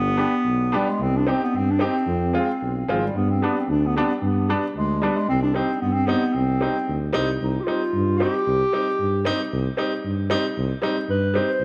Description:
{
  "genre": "klezmer",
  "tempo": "113 BPM",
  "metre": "2/4",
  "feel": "straight",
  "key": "C harmonic minor",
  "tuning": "A4 = 441 Hz",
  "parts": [
    { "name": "dark clarinet", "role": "melody", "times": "0.0-11.6 s", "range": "F3 to C5", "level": "-25 LUFS", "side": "equal", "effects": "none" },
    { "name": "breathy tuba", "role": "bass", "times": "0.0-11.6 s", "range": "G1 to G2", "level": "-27 LUFS", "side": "equal", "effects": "none" },
    { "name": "clear upright piano", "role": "accompaniment", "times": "0.2-11.5 s", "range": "G3 to G4", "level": "-28 LUFS", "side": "equal", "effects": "none" }
  ],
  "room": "moderate echo chamber reverb, RT60 2.3 s",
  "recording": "none",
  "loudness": "-22 LUFS",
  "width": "mono",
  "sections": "0.0-7.4 A section; 7.4-11.6 B section",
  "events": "speeding up 0.0-11.6; clarinet solo 7.4-11.6",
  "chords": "0.0 G; 1.0 Cm; 2.1 Fm; 3.2 G; 5.3 Cm"
}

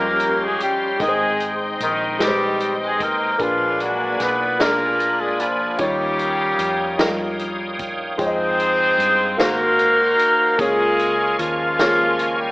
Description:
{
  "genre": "slow gospel",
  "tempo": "50 BPM (dotted quarters)",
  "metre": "6/8",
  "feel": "straight",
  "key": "Ab major",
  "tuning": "A4 = 440 Hz",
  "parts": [
    { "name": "warm horn section", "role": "melody", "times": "0.0-12.5 s", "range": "Eb3 to C5", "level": "-18 LUFS", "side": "equal", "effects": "none" },
    { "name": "warm upright piano", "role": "accompaniment", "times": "0.0-12.5 s", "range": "Ab2 to G5", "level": "-25 LUFS", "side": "equal", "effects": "none" },
    { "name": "bright tonewheel organ", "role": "sustained chords", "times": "0.0-12.5 s", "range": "Ab3 to Eb6", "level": "-27 LUFS", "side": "right 1 dB", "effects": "fast rotary speaker, chorus vibrato" },
    { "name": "hollow-body short-scale fingered electric bass", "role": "bass", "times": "0.0-12.5 s", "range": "Ab1 to G2", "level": "-36 LUFS", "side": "equal", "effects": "none" },
    { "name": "swinging big-band drum kit", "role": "drums", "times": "0.2-12.4 s", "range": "hi-hat, kick drum, snare drum", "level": "-26 LUFS", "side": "equal", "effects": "none" }
  ],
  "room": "moderate echo chamber reverb, RT60 2.5 s",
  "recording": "AM radio sound",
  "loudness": "-17 LUFS",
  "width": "side -22 dB against mid",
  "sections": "0.0-12.5 A section",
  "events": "none",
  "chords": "0.0 Eb13; 1.0 Abmaj7; 3.4 Bb7b9; 5.8 Eb9; 8.2 Fm9; 9.4 Ab13; 10.6 Db6"
}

